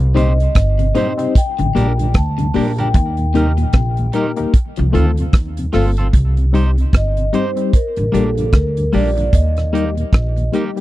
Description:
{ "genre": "roots reggae", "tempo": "75 BPM", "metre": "4/4", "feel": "swing 59% on 16ths", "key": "C dorian", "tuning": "A4 = 439 Hz", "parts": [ { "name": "mellow tonewheel organ", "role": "accompaniment", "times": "0.0-10.6 s", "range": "Eb2 to F4", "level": "-25 LUFS", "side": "left 1 dB", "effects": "slow rotary speaker, tape echo" }, { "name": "upright bass", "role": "bass", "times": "0.0-10.5 s", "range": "G1 to Eb2", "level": "-16 LUFS", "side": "equal", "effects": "none" }, { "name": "reed electric piano", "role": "stabs", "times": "0.1-10.8 s", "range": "G3 to C5", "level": "-20 LUFS", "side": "left 6 dB", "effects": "harmonic tremolo" }, { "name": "vibraphone with soft mallets", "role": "melody", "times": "0.2-10.5 s", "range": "A4 to A5", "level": "-23 LUFS", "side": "equal", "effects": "tape echo" }, { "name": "clean electric guitar", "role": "accompaniment", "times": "0.2-10.7 s", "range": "Bb3 to C5", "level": "-26 LUFS", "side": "right 3 dB", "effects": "tape echo" }, { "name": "electric guitar at the edge of break-up", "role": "arpeggios", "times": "0.2-5.1 s", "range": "Bb2 to F3", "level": "-24 LUFS", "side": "left 6 dB", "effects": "wide subtle chorus" }, { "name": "damped 70s drum kit", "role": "drums", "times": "0.2-10.8 s", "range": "hi-hat, kick drum, rim click", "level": "-13 LUFS", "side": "equal", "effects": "none" } ], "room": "little or no reverb", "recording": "dry, close 1970s-style studio recording", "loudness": "-13 LUFS", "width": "side -16 dB against mid", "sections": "0.0-6.1 A section; 6.1-10.8 B section", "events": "none", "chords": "0.0 Cm; 1.4 Gm; 2.9 Eb; 4.5 F; 6.1 Cm; 7.7 Gm; 9.3 Eb" }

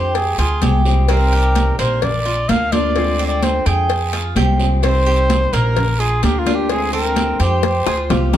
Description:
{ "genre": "latin, Cuban son and guajira", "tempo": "128 BPM", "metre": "4/4", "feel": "straight", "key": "unclear", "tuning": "A4 = 440 Hz", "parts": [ { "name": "trumpet with bucket mute", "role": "melody", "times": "0.0-8.3 s", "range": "F4 to F5", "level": "-20 LUFS", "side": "equal", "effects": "none" }, { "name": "fingerpicked old ladder-braced acoustic guitar", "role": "accompaniment", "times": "0.0-8.4 s", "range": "C3 to G4", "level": "-24 LUFS", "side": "left 3 dB", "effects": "none" }, { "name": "Cuban tres", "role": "arpeggios", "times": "0.0-8.4 s", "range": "Bb3 to G5", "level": "-23 LUFS", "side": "right 2 dB", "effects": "none" }, { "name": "upright bass", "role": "bass", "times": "0.0-8.4 s", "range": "Bb1 to F2", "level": "-18 LUFS", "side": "equal", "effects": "none" }, { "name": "cowbell and bongos", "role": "percussion", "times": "0.1-8.4 s", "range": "none", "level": "-24 LUFS", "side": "left 8 dB", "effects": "none" }, { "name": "congas", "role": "percussion", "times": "0.2-8.4 s", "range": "none", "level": "-23 LUFS", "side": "equal", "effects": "none" }, { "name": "guiro", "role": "percussion", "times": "0.2-8.4 s", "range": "none", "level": "-31 LUFS", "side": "right 5 dB", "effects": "none" }, { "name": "flamenco guitar", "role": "second line", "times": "7.9-8.4 s", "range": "F4 to Ab4", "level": "-24 LUFS", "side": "right 3 dB", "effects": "none" } ], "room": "light reverb", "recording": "dark, warm production", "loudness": "-14 LUFS", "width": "side -11 dB against mid", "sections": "0.0-8.4 A section", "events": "drum fill 7.6-8.4", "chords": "0.2 Fmadd9; 1.1 Cm; 2.0 Bb; 3.0 Dm7b5; 3.9 Fmadd9; 4.8 Cm; 5.8 Bb; 6.7 Dm7b5; 7.6 Fmadd9" }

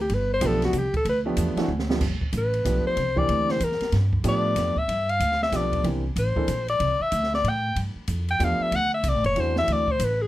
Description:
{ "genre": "jazz, small-group swing and bop", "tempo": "188 BPM", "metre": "3/4", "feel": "swing 63% on 8ths", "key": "G mixolydian", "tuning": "A4 = 440 Hz", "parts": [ { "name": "warm alto saxophone", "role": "melody", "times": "0.0-10.3 s", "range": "F#4 to G5", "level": "-24 LUFS", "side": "left 2 dB", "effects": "none" }, { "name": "upright bass", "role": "bass", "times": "0.0-10.3 s", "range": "F#1 to A2", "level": "-26 LUFS", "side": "equal", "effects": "none" }, { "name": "open jazz drum kit", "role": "drums", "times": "0.1-10.1 s", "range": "crash cymbal, hi-hat, kick drum, ride cymbal, snare drum", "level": "-32 LUFS", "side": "right 1 dB", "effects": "none" }, { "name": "clear grand piano", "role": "accompaniment", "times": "0.4-9.8 s", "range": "E3 to A4", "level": "-28 LUFS", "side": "right 2 dB", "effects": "none" } ], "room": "light reverb", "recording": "none", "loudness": "-21 LUFS", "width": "side -15 dB against mid", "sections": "0.0-2.0 A section; 2.0-10.3 A section", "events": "alto saxophone solo 0.0-10.3; drum fill 1.7-2.0", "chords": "0.1 G9; 0.7 C5; 1.1 G9; 1.7 D5; 2.0 G9; 3.0 C9; 3.9 G9; 5.8 C9; 7.8 G9; 8.7 D9" }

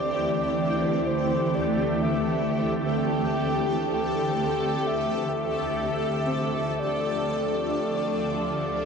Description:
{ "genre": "ambient", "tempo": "63 BPM", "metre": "4/4", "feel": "straight", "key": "unclear", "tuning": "A4 = 440 Hz", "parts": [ { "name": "breathy flute-like synth lead", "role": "melody", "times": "0.0-8.9 s", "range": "C5 to G5", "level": "-30 LUFS", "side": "equal", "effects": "chorus, shimmer reverb, ping-pong delay" }, { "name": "shimmering ambient pad", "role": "sustained chords", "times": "0.0-8.9 s", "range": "D2 to A4", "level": "-26 LUFS", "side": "equal", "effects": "chorus, built-in reverb, phaser, shimmer reverb" }, { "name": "felt-muted upright piano", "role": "arpeggios", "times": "0.0-8.9 s", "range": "C4 to A4", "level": "-40 LUFS", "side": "left 1 dB", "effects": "none" }, { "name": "organ-like drone", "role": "drone", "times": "0.0-8.9 s", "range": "D3 to A3", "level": "-32 LUFS", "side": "equal", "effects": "ensemble chorus, built-in reverb, phaser" }, { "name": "glass harmonica", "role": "texture", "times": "0.0-8.9 s", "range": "D6", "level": "-36 LUFS", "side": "equal", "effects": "shimmer reverb" } ], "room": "wet huge ambient reverb, RT60 7.4 s", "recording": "worn, warbling old tape, cassette tape, warbly pitch drift", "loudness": "-23 LUFS", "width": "side -6 dB against mid", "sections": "0.0-8.9 A section", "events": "none", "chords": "0.0 Am7/D; 4.9 Gsus2/D" }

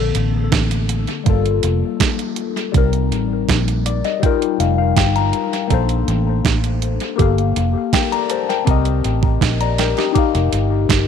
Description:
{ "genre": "lovers rock reggae", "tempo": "81 BPM", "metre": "4/4", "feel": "straight", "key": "Bb major", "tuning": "A4 = 440 Hz", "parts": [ { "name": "mellow tine electric piano", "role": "accompaniment", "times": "0.0-11.1 s", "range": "D3 to Bb5", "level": "-19 LUFS", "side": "left 12 dB", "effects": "overdrive, phaser, tape echo" }, { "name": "vintage muted fingered electric bass", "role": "bass", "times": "0.0-11.1 s", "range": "F1 to C2", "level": "-18 LUFS", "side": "right 1 dB", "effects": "none" }, { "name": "crisp 8-bit digital drum machine", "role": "drums", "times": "0.1-11.1 s", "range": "hi-hat, kick drum, snare drum", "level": "-19 LUFS", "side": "right 4 dB", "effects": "overdrive, tape echo" } ], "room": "light reverb, digital ambience", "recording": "1960s-style stereo", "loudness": "-15 LUFS", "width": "side -7 dB against mid", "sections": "0.0-11.1 A section", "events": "tine electric piano fill 3.5-5.7", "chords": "0.0 Bbmaj9; 1.3 Gm9; 2.7 Cm7; 4.2 F9sus4; 5.7 Bbmaj9; 7.2 Gm9; 8.7 Cm7; 10.2 F9sus4" }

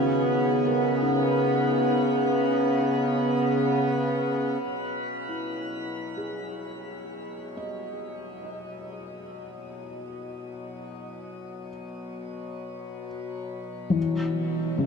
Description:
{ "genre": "ambient", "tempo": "free time", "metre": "none", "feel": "none", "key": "E lydian", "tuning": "A4 = 438 Hz", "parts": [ { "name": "felt-muted upright piano", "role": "arpeggios", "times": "0.0-14.9 s", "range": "C#3 to G#5", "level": "-31 LUFS", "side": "left 2 dB", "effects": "tape echo" }, { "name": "hand-pumped harmonium", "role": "drone", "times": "0.0-14.9 s", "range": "B2 to B3", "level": "-26 LUFS", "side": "equal", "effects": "none" } ], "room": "wet shimmer reverb, RT60 7.3 s", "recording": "dark, warm production", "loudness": "-23 LUFS", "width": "side -5 dB against mid", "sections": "0.0-4.6 A section; 4.6-14.9 B section", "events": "fade-out on felt piano 0.0-4.6; fade-in on harmonium 4.6-14.9", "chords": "0.0 C#13sus4; 4.6 Eadd9; 14.0 Esus2" }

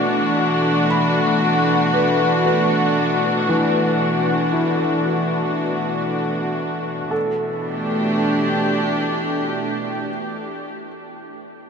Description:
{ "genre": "ambient", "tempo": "58 BPM", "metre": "3/4", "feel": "straight", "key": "unclear", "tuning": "A4 = 438 Hz", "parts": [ { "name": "dark studio string section", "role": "sustained chords", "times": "0.0-10.7 s", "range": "B2 to G4", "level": "-18 LUFS", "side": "equal", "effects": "none" }, { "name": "organ-like drone", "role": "drone", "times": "0.0-10.1 s", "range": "A3 to E4", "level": "-35 LUFS", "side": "right 5 dB", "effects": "none" }, { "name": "felt-muted upright piano", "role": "arpeggios", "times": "0.9-11.7 s", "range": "E3 to B5", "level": "-24 LUFS", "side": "left 1 dB", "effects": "ping-pong delay" } ], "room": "wet huge ambient reverb, RT60 8.8 s", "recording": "none", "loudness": "-17 LUFS", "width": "side -6 dB against mid", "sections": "0.0-7.1 A section; 7.1-10.2 B section", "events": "none", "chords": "0.0 D69/B; 7.1 A5" }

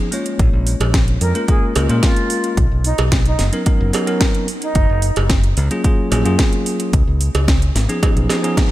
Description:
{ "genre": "nu-disco, nu disco", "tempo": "110 BPM", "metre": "4/4", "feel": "straight", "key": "F# major", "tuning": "A4 = 440 Hz", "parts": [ { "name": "bell-like tine electric piano", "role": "accompaniment", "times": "0.0-8.7 s", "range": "E#3 to C#5", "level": "-21 LUFS", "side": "equal", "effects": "sidechain pumping, diffuse ambient delay" }, { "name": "house drum kit", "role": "drums", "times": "0.1-8.7 s", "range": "hi-hat, snare drum", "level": "-23 LUFS", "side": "right 1 dB", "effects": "studio reverb" }, { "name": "modern bright fingered electric bass", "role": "bass", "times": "0.4-8.3 s", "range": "F#1 to A#2", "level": "-17 LUFS", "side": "equal", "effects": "none" }, { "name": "electronic kick drum", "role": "drums", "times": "0.4-8.7 s", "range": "none", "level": "-16 LUFS", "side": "equal", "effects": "studio reverb" }, { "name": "cowbell", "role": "percussion", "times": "0.8-8.4 s", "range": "none", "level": "-26 LUFS", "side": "right 3 dB", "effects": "none" }, { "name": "mellow jazz flute", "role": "melody", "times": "1.2-5.2 s", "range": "D#4 to A#4", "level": "-24 LUFS", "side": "right 2 dB", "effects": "ping-pong delay" } ], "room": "light reverb, digital ambience", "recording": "none", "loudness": "-14 LUFS", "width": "side -15 dB against mid", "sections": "0.0-8.7 A section", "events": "drum fill 8.3-8.7", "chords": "0.4 A#m7; 2.6 Bmaj7; 4.5 F#maj7; 6.9 C#7" }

